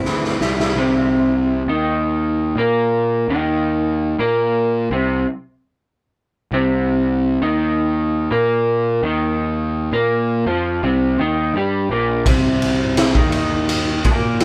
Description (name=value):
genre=psychedelic rock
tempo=84 BPM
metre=4/4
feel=straight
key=unclear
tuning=A4 = 440 Hz
part: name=electric guitar through a small old amp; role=riff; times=0.0-14.4 s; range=Bb2 to Bb4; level=-20 LUFS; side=equal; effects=harmonic tremolo
part: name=fuzz picked electric bass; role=bass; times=0.0-14.4 s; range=Bb1 to Bb2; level=-25 LUFS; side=equal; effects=overdrive
part: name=raw garage drum kit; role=drums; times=0.1-0.8, 12.3-14.4 s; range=kick drum, ride cymbal, snare drum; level=-21 LUFS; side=equal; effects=none
room=light reverb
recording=band playing live in one room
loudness=-18 LUFS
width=mono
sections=0.8-14.4 A section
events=drum fill 0.0-0.8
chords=0.0 C; 0.8 C5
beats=0.05 | 0.77 1.49 2.21 2.93 | 3.65 4.37 5.09 5.80 | 6.52 7.24 7.96 8.68 | 9.40 10.11 10.83 11.55 | 12.27 12.99 13.70 14.42